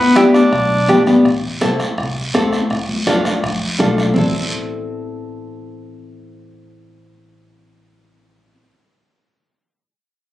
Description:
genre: latin, cumbia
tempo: 165 BPM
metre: 4/4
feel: straight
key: A minor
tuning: A4 = 440 Hz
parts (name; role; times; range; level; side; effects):
- combo organ; melody; 0.0-1.0 s; B3 to E4; -14 LUFS; left 1 dB; none
- upright bass; bass; 0.0-8.5 s; G1 to F2; -25 LUFS; equal; none
- nylon-string guitar; accompaniment; 0.2-8.5 s; B3 to A4; -16 LUFS; equal; none
- bombo; percussion; 0.2-4.2 s; none; -25 LUFS; equal; none
- congas; percussion; 0.2-4.2 s; none; -21 LUFS; left 2 dB; none
- guiro; percussion; 0.2-4.2 s; none; -27 LUFS; right 1 dB; none
room: moderate studio ambience, RT60 0.4 s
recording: recorded on a phone in the room, club reverb, compression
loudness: -13 LUFS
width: side -14 dB against mid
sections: 0.0-1.3 A section; 1.3-4.2 B section; 4.2-7.1 C section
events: none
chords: 0.0 G; 1.3 Am; 2.7 Dm; 4.2 Am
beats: 0.16 0.52 0.89 | 1.25 1.61 1.98 2.34 | 2.71 3.07 3.43 3.80 | 4.16 4.53 4.89 5.26 | 5.62 5.99 6.35 6.71

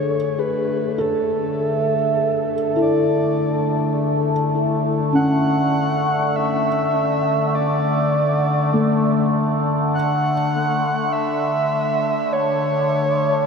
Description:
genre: ambient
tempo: 50 BPM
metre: 4/4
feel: straight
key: D major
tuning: A4 = 441 Hz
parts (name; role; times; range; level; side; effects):
- breathy flute-like synth lead; melody; 0.0-13.5 s; A4 to F#5; -23 LUFS; right 2 dB; chorus, ping-pong delay
- felt-muted upright piano; arpeggios; 0.0-10.3 s; A3 to A4; -24 LUFS; left 1 dB; ping-pong delay
- overtone-sweeping drone; drone; 0.0-13.5 s; D3 to A3; -20 LUFS; left 1 dB; chorus, built-in reverb
room: wet huge ambient reverb, RT60 8.5 s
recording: none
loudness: -17 LUFS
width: side -5 dB against mid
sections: 0.0-13.5 A section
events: fade-in on soft synth lead 0.0-13.5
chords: 0.0 D5; 9.9 A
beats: | 0.39 1.57 2.76 3.94 | 5.13 6.33 7.52 8.73 | 9.94 11.15 12.35

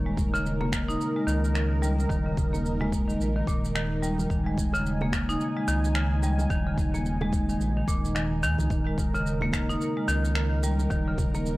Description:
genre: organic downtempo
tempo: 109 BPM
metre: 4/4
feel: swing 59% on 16ths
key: unclear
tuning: A4 = 439 Hz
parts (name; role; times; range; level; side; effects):
- warm analog pad; sustained chords; 0.0-11.6 s; Eb4 to Ab5; -34 LUFS; right 1 dB; chorus, sidechain pumping
- round analog bass; bass; 0.0-11.6 s; Eb1 to Eb2; -29 LUFS; equal; sidechain pumping
- marimba with medium hard mallets; arpeggios; 0.1-11.5 s; Bb2 to Eb4; -28 LUFS; equal; low-pass filter, analog delay
- electronic kick drum; drums; 0.2-11.3 s; none; -30 LUFS; equal; none
- electronic shaker and finger snaps; drums; 0.2-11.6 s; none; -36 LUFS; right 1 dB; none
- congas and bongos; percussion; 0.2-11.4 s; none; -38 LUFS; right 2 dB; none
room: digital ambience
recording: dry, gritty hardware recording, cassette tape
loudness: -24 LUFS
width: side -19 dB against mid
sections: 0.0-11.6 A section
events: filter sweep on marimba 0.0-11.6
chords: 0.0 Ebsus4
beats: 0.45 1.00 1.55 | 2.10 2.65 3.20 3.75 | 4.30 4.85 5.40 5.95 | 6.50 7.05 7.61 8.15 | 8.71 9.26 9.81 10.36 | 10.91 11.46

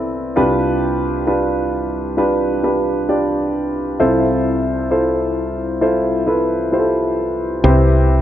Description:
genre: pop ballad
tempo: 66 BPM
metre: 4/4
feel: straight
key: unclear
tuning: A4 = 440 Hz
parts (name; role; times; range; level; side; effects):
- warm concert grand piano; accompaniment; 0.0-8.2 s; C2 to D5; -15 LUFS; equal; none
- woody fretless electric bass; bass; 7.6-8.2 s; C2; -12 LUFS; equal; none
room: moderate lush hall reverb, RT60 2.3 s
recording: nothing above 7.5 kHz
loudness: -15 LUFS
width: side -11 dB against mid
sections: 0.0-7.6 A section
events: none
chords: 0.4 G7/C; 4.0 Fmaj7/C; 7.6 Cmaj7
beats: | 0.36 1.27 2.18 3.09 | 4.00 4.91 5.82 6.72 | 7.63

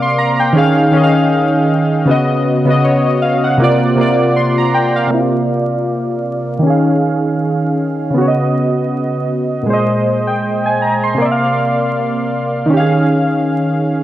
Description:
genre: hip hop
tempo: 79 BPM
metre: 4/4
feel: swing 56% on 16ths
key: C phrygian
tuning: A4 = 443 Hz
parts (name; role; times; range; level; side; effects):
- warbly lo-fi synth keys; solo; 0.0-14.0 s; Bb2 to D6; -12 LUFS; equal; chorus, cassette tape, low-pass filter
room: moderate plate reverb, RT60 3.3 s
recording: vinyl crackle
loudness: -12 LUFS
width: side -13 dB against mid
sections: 0.0-5.1 A section; 5.1-14.0 B section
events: filter sweep on synth keys 5.1-14.0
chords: 0.0 C9sus4; 0.6 Eb9sus4; 2.1 Db9sus4; 3.6 C9sus4; 6.6 Eb9sus4; 8.1 Db9sus4; 9.7 Bb9sus4; 11.2 C9sus4; 12.7 Eb9sus4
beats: 0.55 1.31 | 2.07 2.83 3.59 4.35 | 5.11 5.87 6.63 7.39 | 8.15 8.91 9.67 10.43 | 11.19 11.95 12.71 13.46

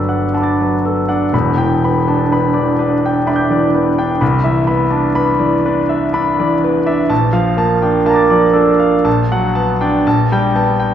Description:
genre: classical, impressionist solo piano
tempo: 61 BPM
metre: 3/4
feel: rubato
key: unclear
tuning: A4 = 441 Hz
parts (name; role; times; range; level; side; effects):
- warm concert grand piano; solo; 0.0-10.9 s; E1 to A6; -12 LUFS; equal; none
room: wet scoring stage reverb, RT60 1.5 s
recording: recorded in a church or concert hall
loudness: -12 LUFS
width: side -9 dB against mid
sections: 0.0-10.9 A section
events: none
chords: 0.0 Gmaj9; 1.3 Em7; 4.2 Cmaj9; 7.1 Bbmaj7; 9.1 D6/Bb; 10.1 Gadd9/Bb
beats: 0.35 | 1.33 2.32 3.28 | 4.21 5.17 6.15 | 7.11 8.08 9.06 | 10.06

